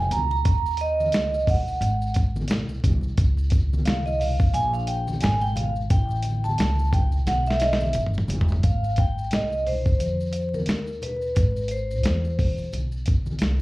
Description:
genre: hip hop, jazz-hop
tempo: 88 BPM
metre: 4/4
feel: swing 57% on 16ths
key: Ab major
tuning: A4 = 440 Hz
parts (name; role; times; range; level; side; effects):
- vibraphone with medium mallets; accompaniment; 0.0-12.7 s; Bb4 to Bb5; -26 LUFS; right 1 dB; slapback echo
- upright bass; bass; 0.0-13.6 s; Gb1 to F2; -25 LUFS; equal; none
- dusty soul sampler-style drum kit; drums; 0.1-13.6 s; hi-hat, kick drum, snare drum, toms; -24 LUFS; equal; overdrive
- congas and maracas; percussion; 0.1-13.6 s; none; -34 LUFS; equal; none
room: little or no reverb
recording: live gig heard through the venue's PA, club reverb, vinyl crackle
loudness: -21 LUFS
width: side -19 dB against mid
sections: 0.0-8.6 A section; 8.6-13.6 B section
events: vibraphone solo 0.0-8.6, 8.6-13.6; drum fill 7.3-8.6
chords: 0.5 Gb6; 1.8 Ab; 3.2 Db5; 5.9 A9; 8.6 Ab; 11.4 Abaug

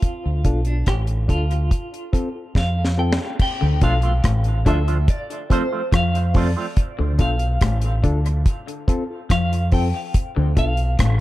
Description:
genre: dub reggae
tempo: 71 BPM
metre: 4/4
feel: straight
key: D dorian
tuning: A4 = 438 Hz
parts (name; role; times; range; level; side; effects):
- clean electric guitar; melody; 0.0-11.2 s; D4 to G5; -28 LUFS; equal; tremolo, low-pass filter, dub echo
- deep reggae drum kit; drums; 0.0-11.2 s; crash cymbal, hi-hat, kick drum, rim click, snare drum; -19 LUFS; equal; none
- deep dub fingered electric bass; bass; 0.3-11.2 s; A1 to F2; -20 LUFS; equal; none
- reed electric piano; stabs; 0.4-10.7 s; C4 to A4; -29 LUFS; left 2 dB; overdrive, low-pass filter, dub echo
- electric guitar at the edge of break-up; riff; 3.6-11.2 s; A2 to F3; -27 LUFS; left 4 dB; dub echo
- electric guitar with an envelope filter; accompaniment; 3.8-6.7 s; F3 to F4; -30 LUFS; right 6 dB; low-pass filter, dub echo
room: light reverb, studio ambience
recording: dark, warm production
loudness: -18 LUFS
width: side -16 dB against mid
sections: 0.0-3.4 A section; 3.4-11.2 B section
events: break 0.0-3.4; filter sweep 0.0-3.4; drum fill 2.6-3.4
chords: 0.0 Dm; 1.7 F; 3.4 Dm; 5.1 F; 6.8 Dm; 8.5 F; 10.1 Dm

